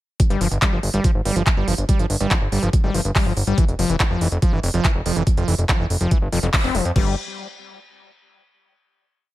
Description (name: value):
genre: psychedelic trance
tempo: 142 BPM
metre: 4/4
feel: straight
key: unclear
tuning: A4 = 440 Hz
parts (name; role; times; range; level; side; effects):
- electronic kick drum; drums; 0.2-7.0 s; none; -18 LUFS; equal; overdrive
- techno drum kit; drums; 0.2-7.0 s; crash cymbal, handclaps, hi-hat; -25 LUFS; equal; none
- overdriven acid bass; riff; 0.3-7.2 s; E3 to C4; -24 LUFS; moving between left 7 dB and right 6 dB; distortion, auto-pan, sidechain pumping, tape echo
- fat analog bass; bass; 0.3-7.2 s; F1 to F2; -22 LUFS; equal; none
room: digital ambience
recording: none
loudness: -17 LUFS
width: side -16 dB against mid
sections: 0.2-7.0 drop; 7.0-8.6 final chord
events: drop 0.2-7.0; band accent 6.5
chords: 0.2 Fsus2/G; 3.6 F5; 7.0 N.C.